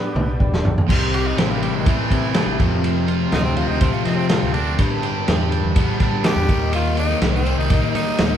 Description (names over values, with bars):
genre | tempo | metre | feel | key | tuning
classic rock | 123 BPM | 4/4 | straight | unclear | A4 = 440 Hz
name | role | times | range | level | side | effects
growling tenor saxophone | melody | 0.0-8.4 s | Eb3 to G4 | -26 LUFS | right 1 dB | none
clear upright piano | accompaniment | 0.0-0.8 s | D4 to D5 | -28 LUFS | left 2 dB | none
tonewheel organ | sustained chords | 0.0-0.9 s | B3 to G4 | -34 LUFS | equal | slow rotary speaker, overdrive, chorus vibrato
modern bright picked electric bass | bass | 0.2-8.4 s | E1 to G3 | -23 LUFS | equal | none
vintage drum kit | drums | 0.2-8.3 s | crash cymbal, kick drum, ride cymbal, snare drum, toms | -20 LUFS | equal | none
cranked stack guitar | riff | 0.9-8.4 s | F2 to G4 | -25 LUFS | right 5 dB | overdrive
crunchy overdriven guitar | riff | 0.9-8.4 s | F2 to Eb4 | -24 LUFS | left 7 dB | none
room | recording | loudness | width
moderate large studio reverb, RT60 0.9 s | band playing live in one room | -16 LUFS | side -9 dB against mid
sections
0.9-8.4 A section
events
drum fill 0.0-0.9; upright piano fill 0.1-0.9; tenor saxophone solo 0.9-8.4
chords
0.0 G; 0.9 C6; 2.6 F; 4.8 G; 6.5 Eb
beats
0.39 | 0.88 1.37 1.86 2.35 | 2.83 3.32 3.81 4.30 | 4.79 5.27 5.76 6.25 | 6.73 7.22 7.70 8.19